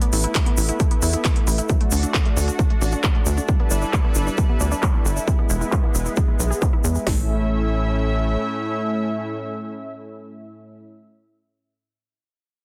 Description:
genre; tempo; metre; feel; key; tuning
uplifting trance; 134 BPM; 4/4; straight; A major; A4 = 435 Hz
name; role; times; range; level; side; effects
lush unison pad; sustained chords; 0.0-10.8 s; A2 to E5; -29 LUFS; equal; chorus, sidechain pumping
unison pluck; arpeggios; 0.0-7.3 s; F#3 to B4; -33 LUFS; equal; sidechain pumping, digital delay
techno drum kit; drums; 0.0-7.0 s; handclaps, hi-hat; -30 LUFS; equal; low-pass filter on hats, low-pass filter on snare, low-pass filter on room
tight sequencer bass; bass; 0.1-8.4 s; E1 to E2; -24 LUFS; equal; sidechain pumping
egg shaker; percussion; 0.1-7.0 s; none; -33 LUFS; equal; none
techno drum kit; drums; 0.4-7.2 s; hi-hat, kick drum, snare drum; -22 LUFS; equal; none
room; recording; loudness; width
light reverb, digital ambience; dense, heavily limited modern master; -21 LUFS; mono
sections
0.0-7.1 A section; 7.1-10.6 B section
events
filter sweep on drum 0.0-7.1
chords
0.0 Asus2; 1.7 D; 3.5 G6; 5.3 E; 7.1 A

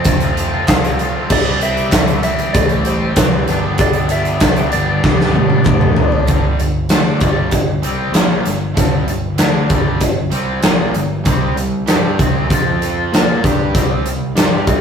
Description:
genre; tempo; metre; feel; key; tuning
classic rock; 96 BPM; 4/4; straight; G major; A4 = 440 Hz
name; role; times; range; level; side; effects
clean lap steel guitar; melody; 0.0-5.9 s; G4 to F5; -22 LUFS; right 2 dB; none
bright tonewheel organ; sustained chords; 0.0-6.3 s; B3 to A4; -32 LUFS; equal; none
overdriven semi-hollow guitar; riff; 0.0-14.8 s; F2 to Bb4; -23 LUFS; left 4 dB; phaser
tight distorted guitar; riff; 0.0-14.8 s; F2 to Bb4; -23 LUFS; right 3 dB; distortion
big rock drum kit; drums; 0.0-14.8 s; crash cymbal, hi-hat, kick drum, snare drum, toms; -14 LUFS; equal; none
growling fingered electric bass; bass; 0.1-14.8 s; F1 to Bb2; -21 LUFS; equal; overdrive
group handclap; percussion; 0.7-5.8 s; none; -30 LUFS; right 2 dB; none
room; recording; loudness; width
moderate studio reverb, RT60 0.6 s; rough rehearsal-room recording, warm saturation; -12 LUFS; side -7 dB against mid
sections
0.0-6.3 A section; 6.3-14.8 B section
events
drum fill 5.0-6.3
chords
0.0 F; 1.3 C; 3.5 G; 6.3 G5; 11.3 C5; 12.5 F5; 13.1 C5

